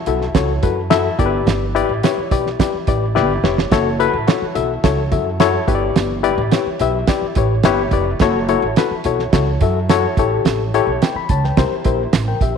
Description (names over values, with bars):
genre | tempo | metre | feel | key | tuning
uptempo 1960s-style soul | 107 BPM | 4/4 | straight | unclear | A4 = 439 Hz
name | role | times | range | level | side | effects
reed electric piano | accompaniment | 0.1-12.6 s | E4 to B5 | -18 LUFS | left 8 dB | fast tremolo
upright bass | bass | 0.1-12.6 s | F1 to F#2 | -21 LUFS | right 2 dB | none
cloth-damped thuddy drum kit | drums | 0.1-12.5 s | hi-hat, kick drum, snare drum | -19 LUFS | right 5 dB | none
room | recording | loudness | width
moderate echo chamber reverb, RT60 1.8 s, small room ambience | 1960s-style stereo | -14 LUFS | side -6 dB against mid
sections
0.0-12.6 A section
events
drum fill 3.2-3.7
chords
0.0 F#m7; 1.2 G6; 3.7 F#m7; 5.7 G6; 8.2 F#m7; 10.2 A7; 11.6 C7